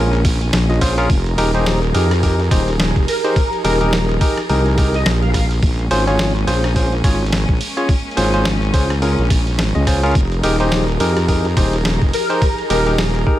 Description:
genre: glitch hop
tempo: 106 BPM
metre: 4/4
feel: swing 58% on 16ths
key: F minor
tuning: A4 = 440 Hz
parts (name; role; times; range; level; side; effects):
- warm studio string section; sustained chords; 0.0-13.4 s; F3 to Bb4; -25 LUFS; right 2 dB; vintage 12-bit sampler grit, sidechain pumping
- barky tine electric piano; stabs; 0.0-13.4 s; Db4 to Eb5; -20 LUFS; equal; sidechain pumping, digital delay
- wobble bass; bass; 0.0-13.2 s; Eb1 to F2; -17 LUFS; equal; chorus
- boom bap sampler-style drum kit; drums; 0.1-13.2 s; hi-hat, rim click, snare drum; -23 LUFS; equal; none
- electronic kick drum; drums; 0.2-13.4 s; none; -17 LUFS; equal; none
- sync lead; melody; 3.1-5.4, 12.1-12.9 s; Bb4 to F5; -23 LUFS; left 1 dB; ensemble chorus, digital delay
room: digital ambience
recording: none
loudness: -14 LUFS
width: side -13 dB against mid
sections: 0.0-13.4 A section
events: none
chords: 0.0 Bbm9; 1.1 Fm11; 5.6 Bbm9; 10.2 Fm11

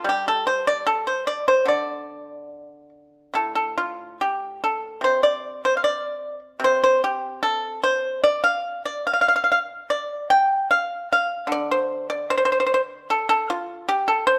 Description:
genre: chinese traditional, Chinese solo plucked strings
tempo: 74 BPM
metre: 2/4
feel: rubato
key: D yu mode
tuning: A4 = 440 Hz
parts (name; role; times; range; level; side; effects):
- pipa; solo; 0.0-14.4 s; A2 to G5; -22 LUFS; equal; none
room: moderate recital hall reverb, RT60 1.3 s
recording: close, detailed microphones, lossy compression artefacts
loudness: -22 LUFS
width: mono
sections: 0.0-3.4 A section; 3.4-14.4 B section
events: none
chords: none

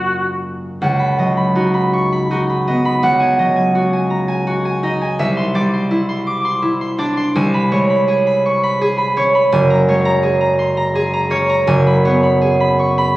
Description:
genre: classical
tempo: 83 BPM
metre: 3/4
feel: rubato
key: unclear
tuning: A4 = 441 Hz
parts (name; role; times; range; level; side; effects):
- concert harp; accompaniment; 0.0-13.2 s; Gb1 to D6; -13 LUFS; right 1 dB; none
room: wet recital hall reverb, RT60 1.5 s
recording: recorded on a phone in the room, studio reverb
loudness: -13 LUFS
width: side -17 dB against mid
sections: 0.8-13.2 A section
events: none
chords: 0.0 Gbmaj7; 0.8 Db9sus4; 3.0 Ebm7/Db; 5.2 Cadd9; 7.3 Abmadd11/C; 9.5 Gbadd9; 11.7 Abm11/Gb

